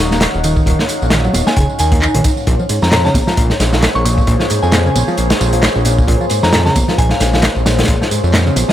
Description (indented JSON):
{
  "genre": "breakbeat, breaks",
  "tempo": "133 BPM",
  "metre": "4/4",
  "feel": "swing 56% on 16ths",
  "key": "unclear",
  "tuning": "A4 = 440 Hz",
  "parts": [
    { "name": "glassy synth bell", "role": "melody", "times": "0.0-8.7 s", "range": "Eb5 to Db6", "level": "-22 LUFS", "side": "equal", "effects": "chorus, AM radio sound, ping-pong delay" },
    { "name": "deep dark ambient pad", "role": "sustained chords", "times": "0.0-8.7 s", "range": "Bb3 to Gb5", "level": "-20 LUFS", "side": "left 1 dB", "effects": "chorus, built-in reverb, sidechain pumping" },
    { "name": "fat analog bass", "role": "bass", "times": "0.0-8.6 s", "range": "Eb1 to F2", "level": "-15 LUFS", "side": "equal", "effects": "none" },
    { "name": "picked electric bass", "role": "riff", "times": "0.1-8.7 s", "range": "Ab2 to Eb4", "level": "-19 LUFS", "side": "equal", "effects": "ping-pong delay" },
    { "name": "crunchy breakbeat drum kit", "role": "drums", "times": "0.1-8.7 s", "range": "hi-hat, kick drum, snare drum", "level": "-16 LUFS", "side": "equal", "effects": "none" },
    { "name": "punchy analog drum machine", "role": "drums", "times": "0.1-8.7 s", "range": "handclaps, ride cymbal, tambourine", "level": "-23 LUFS", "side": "right 2 dB", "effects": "none" },
    { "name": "congas", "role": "percussion", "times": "1.3-8.7 s", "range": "none", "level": "-22 LUFS", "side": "right 2 dB", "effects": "none" }
  ],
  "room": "small room ambience",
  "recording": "none",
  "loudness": "-11 LUFS",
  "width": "side -12 dB against mid",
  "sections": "0.0-8.7 A section",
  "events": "none",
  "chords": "0.0 Ebm9; 2.5 Bbm9"
}